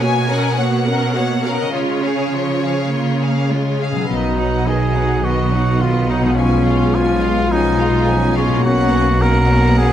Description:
cinematic, heroic adventure film score; 105 BPM; 4/4; straight; B lydian; A4 = 441 Hz
rich symphonic violin section; melody; 0.0-9.9 s; C#5 to G#5; -26 LUFS; left 4 dB
clear studio violin section; second line; 0.0-9.9 s; B3 to F#5; -25 LUFS; left 2 dB
warm symphonic viola section; accompaniment; 0.0-9.9 s; D#3 to A#4; -23 LUFS; right 2 dB
clear symphonic cello section; bass; 0.0-9.9 s; B2 to C#3; -20 LUFS; right 2 dB
concert harp; arpeggios; 3.9-9.9 s; B2 to C#5; -24 LUFS; left 10 dB
mellow French horn section; sustained chords; 4.1-9.9 s; F#3 to F#4; -22 LUFS; left 4 dB
warm trumpet; stabs; 4.1-9.9 s; C#4 to A#4; -20 LUFS; right 2 dB
rich symphonic double bass section; bass; 4.1-9.9 s; B1; -19 LUFS; right 1 dB
moderate scoring stage reverb, RT60 1.5 s; close, detailed microphones; -14 LUFS; side -10 dB against mid
0.0-4.1 A section; 4.1-9.9 A section
0.0 F#/B; 1.7 C#; 4.1 B; 6.4 C#/B; 8.7 F#/B

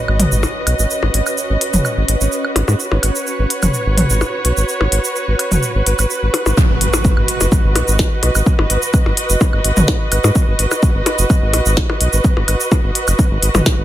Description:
minimal techno; 127 BPM; 4/4; straight; G# minor; A4 = 440 Hz
impact; sound effects; 0.0-0.9, 6.6-8.5 s; -24 LUFS; equal
muted studio string section; texture; 0.0-13.8 s; F#4 to D#5; -20 LUFS; right 1 dB; sidechain pumping
pulsing gated texture; texture; 0.0-6.6 s; C#4 to C#5; -27 LUFS; right 2 dB; chorus, built-in reverb, sidechain pumping
round analog bass; bass; 0.1-13.8 s; F#1 to G#2; -16 LUFS; equal; sidechain pumping
electronic woodblock, toms and percussion blips; percussion; 0.1-13.8 s; -20 LUFS; left 1 dB; overdrive, tape echo
minimal click drum kit; drums; 0.2-13.8 s; hi-hat, shaker, snare drum; -19 LUFS; right 1 dB; overdrive
electronic kick drum; drums; 6.6-13.8 s; -15 LUFS; equal; overdrive
light reverb; -13 LUFS; side -13 dB against mid
0.0-6.6 A section; 6.6-13.8 B section
impact 0.0-0.9, 6.6-8.5; drop 6.6-13.8
0.0 G#m

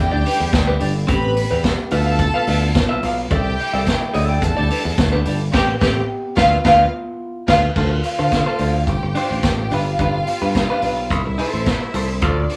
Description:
disco; 108 BPM; 4/4; straight; D dorian; A4 = 439 Hz
clear studio string section; second line; 0.0-12.6 s; D4 to B5; -24 LUFS; equal
clean electric guitar; accompaniment; 0.0-12.6 s; C4 to G5; -26 LUFS; equal
mellow French horn section; sustained chords; 0.0-12.6 s; C3 to G4; -32 LUFS; equal
modern bright fingered electric bass; bass; 0.0-12.5 s; G1 to D3; -23 LUFS; equal
vintage drum kit; drums; 0.3-12.6 s; crash cymbal, hi-hat, kick drum, snare drum; -24 LUFS; equal
tambourine; percussion; 0.3-12.4 s; -43 LUFS; equal
moderate studio reverb, RT60 0.5 s; band playing live in one room, small room ambience; -18 LUFS; mono
0.0-7.8 A section; 7.8-12.6 B section
band accent 5.5-7.8
0.0 Em7; 1.1 Am9; 1.9 Dm69; 3.3 C69; 4.4 Em7; 5.5 Am9; 6.4 Dm69; 7.8 Dm7; 8.9 G7sus4; 9.7 G7; 11.1 C6

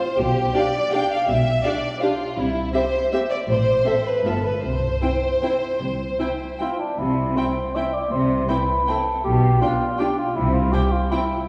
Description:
classical, orchestral ballroom waltz; 144-174 BPM; 3/4; rubato; C major; A4 = 441 Hz
rich studio violin section; second line; 0.0-11.2 s; E4 to G5; -26 LUFS; equal
rich studio cello section; bass; 0.2-10.7 s; G2 to C3; -30 LUFS; equal
rich studio double bass section; bass; 0.2-10.7 s; G1 to C2; -28 LUFS; equal
rich studio violin section; melody; 0.6-11.2 s; E5 to G5; -35 LUFS; equal
rich studio viola section; accompaniment; 0.6-11.2 s; B3 to A4; -30 LUFS; equal
dark cor anglais; second line; 6.6-11.5 s; D4 to E5; -25 LUFS; equal
wet concert hall reverb, RT60 2.0 s; heard from further back in the room, small room ambience; -21 LUFS; mono
0.0-7.0 A section; 7.0-11.5 A section
0.2 G7/B; 2.4 C; 3.5 Am; 4.2 G9; 4.6 C; 9.2 G7/B; 10.4 C

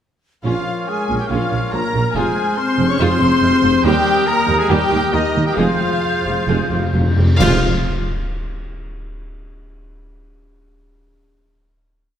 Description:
cinematic, heroic adventure film score; 130-142 BPM; 4/4; straight; F minor; A4 = 441 Hz
warm symphonic violin section; second line; 0.4-7.7 s; F4 to Db6; -28 LUFS; left 3 dB
warm symphonic viola section; accompaniment; 0.4-7.7 s; C3 to Ab4; -25 LUFS; right 1 dB
clear trumpet; stabs; 0.4-7.6 s; Eb4 to Db5; -23 LUFS; right 2 dB
dark studio cello section; bass; 0.4-7.7 s; Eb2 to Bb2; -25 LUFS; right 2 dB
warm chamber double bass section; bass; 0.4-7.7 s; F1 to Eb2; -24 LUFS; right 3 dB
warm symphonic violin section; melody; 0.5-7.7 s; Eb5 to Db6; -24 LUFS; left 3 dB
mellow clarinet; second line; 0.5-7.6 s; G4 to Bb4; -28 LUFS; equal
mellow hollow large flute ensemble; second line; 0.5-7.7 s; Eb6 to G6; -28 LUFS; left 1 dB
warm oboe; second line; 0.5-7.6 s; Bb4 to Db5; -29 LUFS; right 1 dB
dark French horn section; sustained chords; 0.5-7.6 s; Eb3 to F4; -22 LUFS; left 4 dB
mellow tuba; bass; 0.5-7.6 s; F1 to Eb2; -25 LUFS; right 3 dB
cymbal swell, clash cymbals and concert bass drum; percussion; 3.8-8.3 s; -27 LUFS; equal
timpani; percussion; 5.6-7.6 s; F2; -20 LUFS; left 1 dB
wet concert hall reverb, RT60 1.9 s; -14 LUFS; side -9 dB against mid
0.4-7.4 theme; 7.4-9.2 final chord
slowing down 3.0-7.4; timpani fill 5.6-7.4; band accent 7.4-7.9
0.4 Bbm; 2.2 Fm; 3.9 Eb; 5.6 Fmadd9; 7.4 Fm

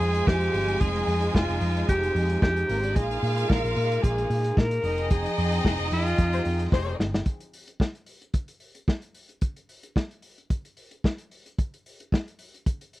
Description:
disco; 111 BPM; 4/4; straight; F minor; A4 = 435 Hz
breathy alto saxophone; melody; 0.0-6.7 s; F4 to Bb4; -27 LUFS; equal
bright studio violin section; second line; 0.0-7.0 s; Ab3 to Ab5; -32 LUFS; right 2 dB
rich studio string section; sustained chords; 0.0-7.2 s; F3 to G5; -33 LUFS; left 1 dB
hollow-body short-scale picked electric bass; bass; 0.0-7.2 s; F1 to Bb2; -27 LUFS; equal
vintage drum kit; drums; 0.0-13.0 s; hi-hat, kick drum, snare drum; -24 LUFS; equal
warm horn section; stabs; 6.3-7.0 s; Ab3 to C5; -30 LUFS; left 6 dB
little or no reverb; dry, close 1970s-style studio recording; -23 LUFS; side -16 dB against mid
0.0-7.3 A section; 7.3-13.0 B section
band accent 5.1-7.3; drum fill 6.7-7.3
0.0 Fm9; 3.0 Bb7sus4; 4.8 Fm9; 7.3 N.C.

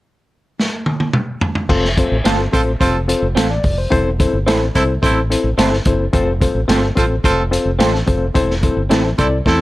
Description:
uptempo 1960s-style soul; 108 BPM; 4/4; straight; F major; A4 = 441 Hz
vintage drum kit; drums; 0.6-9.6 s; crash cymbal, hi-hat, kick drum, snare drum, toms; -18 LUFS; equal
reed electric piano; accompaniment; 1.7-9.6 s; C4 to F5; -18 LUFS; left 3 dB; overdrive, fast tremolo
fretless electric bass; bass; 1.7-9.6 s; E1 to E2; -19 LUFS; equal
electric guitar through a small old amp; stabs; 2.2-9.0 s; C4 to A4; -21 LUFS; right 4 dB; lush chorus
warm horn section; second line; 2.5-9.6 s; C4 to A4; -19 LUFS; right 2 dB
light reverb; -14 LUFS; side -17 dB against mid
0.0-1.7 A section; 1.7-9.6 B section
drum fill 0.6-1.7
0.0 N.C.; 1.7 F; 3.9 Am/E; 6.1 F; 8.4 Am/E

